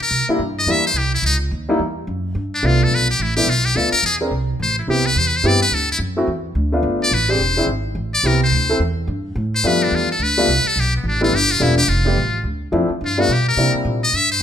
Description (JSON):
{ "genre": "jazz, small-group swing and bop", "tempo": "214 BPM", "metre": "4/4", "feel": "swing 61% on 8ths", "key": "G mixolydian", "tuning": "A4 = 439 Hz", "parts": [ { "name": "trumpet with metal mute", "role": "melody", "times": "0.0-14.4 s", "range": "B3 to E5", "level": "-18 LUFS", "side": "left 2 dB", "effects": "none" }, { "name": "upright bass", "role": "bass", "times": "0.0-14.4 s", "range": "E1 to C3", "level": "-20 LUFS", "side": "right 1 dB", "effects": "none" }, { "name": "warm upright piano", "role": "accompaniment", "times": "0.3-14.0 s", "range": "F3 to Bb4", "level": "-21 LUFS", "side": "left 1 dB", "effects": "none" } ], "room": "moderate large studio reverb, RT60 1.3 s", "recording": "minimal, uncompressed stereo recording", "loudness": "-16 LUFS", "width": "side -9 dB against mid", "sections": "0.0-9.1 A section; 9.1-14.4 A section", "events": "none", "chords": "0.1 C9; 1.2 C#m; 2.4 G9; 3.5 Bm7b5; 4.0 Eaug7; 4.6 Am7; 5.7 Dadd9; 6.8 G9; 7.4 Eaug7; 8.0 Am7; 8.5 Dsus2; 9.1 G9; 12.4 Dm7; 13.0 G9; 13.6 C9" }